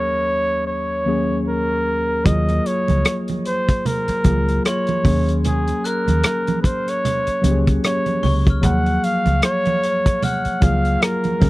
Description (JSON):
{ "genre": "lush 1970s-style soul", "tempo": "75 BPM", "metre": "4/4", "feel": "swing 58% on 16ths", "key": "unclear", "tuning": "A4 = 440 Hz", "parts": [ { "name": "breathy flugelhorn", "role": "melody", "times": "0.0-11.5 s", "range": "Ab4 to Gb5", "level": "-22 LUFS", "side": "equal", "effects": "tape echo" }, { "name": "tine electric piano", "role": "accompaniment", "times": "0.0-11.5 s", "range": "Eb2 to Ab4", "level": "-23 LUFS", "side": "left 1 dB", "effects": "none" }, { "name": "glockenspiel with hard plastic mallets", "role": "texture", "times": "0.0-11.5 s", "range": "C6 to Gb6", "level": "-34 LUFS", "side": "left 3 dB", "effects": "none" }, { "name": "vintage muted fingered electric bass", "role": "bass", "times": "2.3-11.5 s", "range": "Db2 to Eb2", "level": "-19 LUFS", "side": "equal", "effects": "none" }, { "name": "vintage drum kit", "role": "drums", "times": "2.3-11.5 s", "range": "hi-hat, kick drum, rim click", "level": "-19 LUFS", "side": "equal", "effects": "none" }, { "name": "congas", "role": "percussion", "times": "2.3-11.5 s", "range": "none", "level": "-25 LUFS", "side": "right 4 dB", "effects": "none" } ], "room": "little or no reverb", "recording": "dry, close 1970s-style studio recording", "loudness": "-16 LUFS", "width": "side -18 dB against mid", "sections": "0.0-11.5 A section", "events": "none", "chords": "0.0 Ab9sus4/Eb; 2.3 Gbmaj9; 5.0 Ab9sus4/Eb; 8.6 Gbmaj9", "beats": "0.67 1.47 | 2.26 3.06 3.85 4.65 | 5.45 6.24 7.04 7.84 | 8.63 9.43 10.22 11.02" }